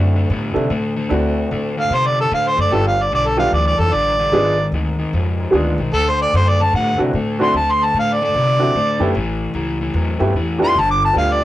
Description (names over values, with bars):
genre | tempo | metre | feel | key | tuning
electric blues shuffle | 149 BPM | 4/4 | swing 64% on 8ths | D mixolydian | A4 = 440 Hz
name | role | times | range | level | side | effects
warm upright piano | accompaniment | 0.0-11.4 s | G#3 to A4 | -19 LUFS | right 1 dB | none
overdriven semi-hollow guitar | riff | 0.0-11.4 s | G2 to B3 | -23 LUFS | left 3 dB | none
upright bass | bass | 0.0-11.4 s | G1 to C3 | -20 LUFS | equal | none
warm harmonica | melody | 1.8-11.4 s | A4 to D6 | -16 LUFS | equal | overdrive
room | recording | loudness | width
moderate booth ambience, RT60 0.2 s | rough rehearsal-room recording, tube saturation | -15 LUFS | side -14 dB against mid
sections
0.0-11.4 A section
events
none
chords
0.0 D9; 2.7 G9; 4.3 G#dim7; 5.9 D9; 9.1 A9; 10.8 G9